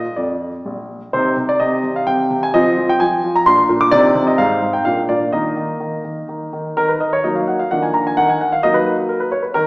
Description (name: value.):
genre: classical-period piano sonatina.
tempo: 128 BPM.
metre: 3/4.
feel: straight.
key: Eb major.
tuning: A4 = 440 Hz.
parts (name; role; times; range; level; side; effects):
clear baby grand piano; solo; 0.0-9.7 s; Bb1 to D6; -14 LUFS; equal; none.
room: wet recital hall reverb, RT60 1.5 s.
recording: heard from further back in the room, small speaker sound.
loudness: -14 LUFS.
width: side -25 dB against mid.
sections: 0.0-6.8 A section; 6.8-9.7 B section.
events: none.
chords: 0.0 Bb; 1.1 Cm; 2.5 F5; 3.5 Bb; 3.9 Cm; 4.4 Fm7/Ab; 4.9 Bb; 5.3 Eb5; 6.8 Ebm; 7.7 Bb/Eb; 8.2 Ebm.